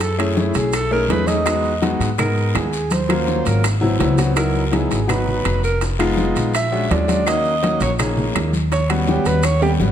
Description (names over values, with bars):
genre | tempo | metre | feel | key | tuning
Afro-Cuban jazz | 165 BPM | 4/4 | straight | unclear | A4 = 440 Hz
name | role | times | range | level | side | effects
breathy alto saxophone | melody | 0.0-9.7 s | C#4 to E5 | -22 LUFS | right 2 dB | none
upright bass | bass | 0.0-9.9 s | E#1 to G#2 | -21 LUFS | equal | none
bongos | percussion | 0.0-9.9 s | none | -30 LUFS | left 7 dB | none
congas | percussion | 0.0-9.9 s | none | -26 LUFS | left 1 dB | none
guiro | percussion | 0.0-9.9 s | none | -34 LUFS | left 6 dB | none
maracas | percussion | 0.0-9.9 s | none | -34 LUFS | right 4 dB | none
timbales | percussion | 0.0-9.7 s | none | -28 LUFS | right 8 dB | none
clear concert grand piano | accompaniment | 0.2-9.9 s | F#3 to G#4 | -22 LUFS | left 2 dB | none
claves | percussion | 0.2-9.6 s | none | -33 LUFS | left 9 dB | none
room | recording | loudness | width
light reverb | none | -16 LUFS | side -9 dB against mid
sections
0.0-9.9 A section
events
alto saxophone solo 0.0-9.9; drum fill 2.9-4.4, 9.6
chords
0.0 F#m7; 0.7 B13; 1.5 Emaj9; 2.9 D#m9; 3.6 G#7alt; 4.4 C#m11; 5.8 Fm7b5; 6.5 A#7alt; 7.3 D#m7; 8.7 D#7alt